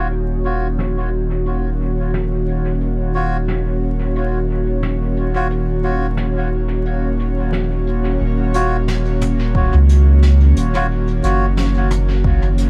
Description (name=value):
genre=ambient dub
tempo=89 BPM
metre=4/4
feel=swing 55% on 16ths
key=Eb minor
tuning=A4 = 440 Hz
part: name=airy breathy pad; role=sustained chords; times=0.0-12.7 s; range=Eb3 to Db5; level=-24 LUFS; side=equal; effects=chorus
part: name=melodica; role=stabs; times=0.0-11.5 s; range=F4 to Db5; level=-28 LUFS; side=equal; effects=low-pass filter, dub echo
part: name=soft dub sub bass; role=bass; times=0.0-12.7 s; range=Eb1 to Db2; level=-19 LUFS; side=equal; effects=none
part: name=jazz brush drum kit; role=drums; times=0.1-12.7 s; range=hi-hat, snare drum, toms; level=-32 LUFS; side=equal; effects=low-pass filter on snare, low-pass filter on hats, low-pass filter on toms, low-pass filter on room, dub echo
part: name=electronic kick drum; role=drums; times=9.5-12.4 s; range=none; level=-20 LUFS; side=equal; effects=overdrive
room=little or no reverb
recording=echo-heavy mix, vinyl crackle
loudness=-18 LUFS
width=mono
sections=0.0-8.2 A section; 8.2-12.7 B section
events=filter sweep on analog synth pad 0.0-8.2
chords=0.0 Ebm7